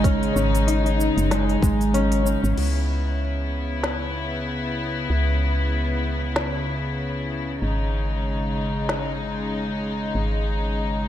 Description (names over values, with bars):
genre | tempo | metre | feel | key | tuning
organic downtempo | 95 BPM | 4/4 | swing 57% on 16ths | C# minor | A4 = 440 Hz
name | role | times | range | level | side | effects
clear studio string section | sustained chords | 0.0-11.1 s | C#3 to E4 | -26 LUFS | left 2 dB | sidechain pumping
concert harp | arpeggios | 0.0-5.2 s | G#3 to D#4 | -25 LUFS | equal | vintage 12-bit sampler grit, ping-pong delay
woody FM bass | bass | 0.0-11.1 s | F#1 to C#2 | -25 LUFS | equal | tube saturation, sidechain pumping
electronic kick drum | drums | 0.0-1.8 s | none | -22 LUFS | equal | none
organic electronic drum kit | drums | 0.0-9.0 s | crash cymbal, hi-hat, shaker, snare drum | -30 LUFS | equal | none
room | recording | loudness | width
light reverb | dark, warm production | -21 LUFS | side -11 dB against mid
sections
0.0-2.6 A section; 2.6-11.1 B section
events
none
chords
0.0 G#sus4; 2.6 C#m7; 7.6 G#sus4